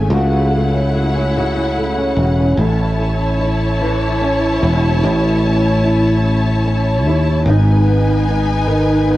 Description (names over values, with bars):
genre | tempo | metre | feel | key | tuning
six-eight pop ballad | 49 BPM (dotted quarters) | 6/8 | straight | unclear | A4 = 439 Hz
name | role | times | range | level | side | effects
flamenco guitar | accompaniment | 0.0-9.2 s | G#2 to G#4 | -18 LUFS | equal | double-tracked left and right, plate reverb
warm studio string section | sustained chords | 0.0-9.2 s | A3 to A5 | -21 LUFS | left 1 dB | plate reverb
sustaining fretless electric bass | bass | 0.0-9.2 s | E1 to D#2 | -16 LUFS | equal | lush chorus
room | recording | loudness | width
light reverb | home recording on cassette | -13 LUFS | side -15 dB against mid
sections
0.0-2.6 A section; 2.6-9.2 B section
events
none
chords
0.1 F#m7/C#; 2.6 A; 7.5 G#m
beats
| 0.11 1.35 | 2.58 3.81 | 5.04 6.25 | 7.46 8.68